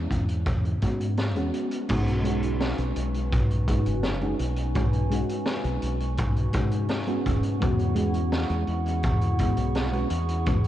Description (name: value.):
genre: vaporwave.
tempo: 84 BPM.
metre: 4/4.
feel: straight.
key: B major.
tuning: A4 = 439 Hz.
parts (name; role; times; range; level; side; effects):
mellow FM electric piano; accompaniment; 0.0-10.6 s; G#3 to F#4; -30 LUFS; equal; ensemble chorus, cassette tape, analog delay.
fingered electric bass; bass; 0.0-10.7 s; E1 to G#2; -28 LUFS; equal; none.
kick drum; drums; 0.1-10.6 s; none; -26 LUFS; equal; vintage 12-bit sampler grit.
raw garage drum kit; drums; 0.1-10.7 s; crash cymbal, hi-hat, snare drum; -34 LUFS; equal; vintage 12-bit sampler grit.
warbly tape-like pad; sustained chords; 2.3-10.7 s; D#4 to C#6; -34 LUFS; right 1 dB; chorus, built-in reverb.
room: moderate cathedral reverb, RT60 4.8 s.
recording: dreamy mix soaked in reverb, cassette tape.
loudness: -23 LUFS.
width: side -12 dB against mid.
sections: 0.0-1.9 A section; 1.9-10.7 B section.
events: none.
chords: 0.0 E69; 1.9 B69; 7.3 E69.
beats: 0.47 1.18 | 1.90 2.61 3.32 4.04 | 4.75 5.47 6.18 6.90 | 7.61 8.32 9.04 9.75 | 10.47.